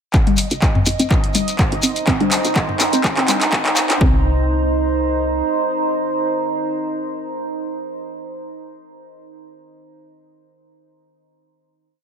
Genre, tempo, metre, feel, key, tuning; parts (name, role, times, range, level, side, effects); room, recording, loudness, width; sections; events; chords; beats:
minimal techno; 124 BPM; 4/4; swing 54% on 16ths; C minor; A4 = 441 Hz
woody FM bass; bass; 0.1-5.4 s; G1 to C2; -22 LUFS; equal; sidechain pumping, high-pass filter
electronic kick drum; drums; 0.1-4.1 s; -18 LUFS; equal
punchy analog drum machine; drums; 0.1-4.0 s; handclaps, hi-hat; -21 LUFS; equal
shekere; percussion; 0.1-4.0 s; -24 LUFS; left 4 dB
bubbling stepped-filter texture; texture; 0.3-4.0 s; Eb5; -30 LUFS; right 2 dB; chorus, built-in reverb, sidechain pumping
deep dark ambient pad; texture; 1.4-8.0 s; Eb4 to Bb5; -22 LUFS; right 2 dB; chorus, built-in reverb, sidechain pumping
electronic toms; percussion; 0.3-3.4 s; -22 LUFS; left 6 dB; ping-pong delay
resonant blip pluck; riff; 0.8-4.2 s; C4 to D4; -24 LUFS; right 3 dB; chorus, sidechain pumping, dub echo
light reverb, digital ambience; high-pass filter; -16 LUFS; side -7 dB against mid
0.1-4.0 build; 4.0-7.9 final chord
build-up 0.1-4.0; drum fill 0.1-4.0; filter sweep on synth pluck 0.1-4.0; filter sweep 0.1-4.0
0.1 Cm7
| 0.14 0.62 1.11 1.59 | 2.07 2.56 3.04 3.53 | 4.01 4.49 4.98 5.46 | 5.95 6.43 6.91 7.40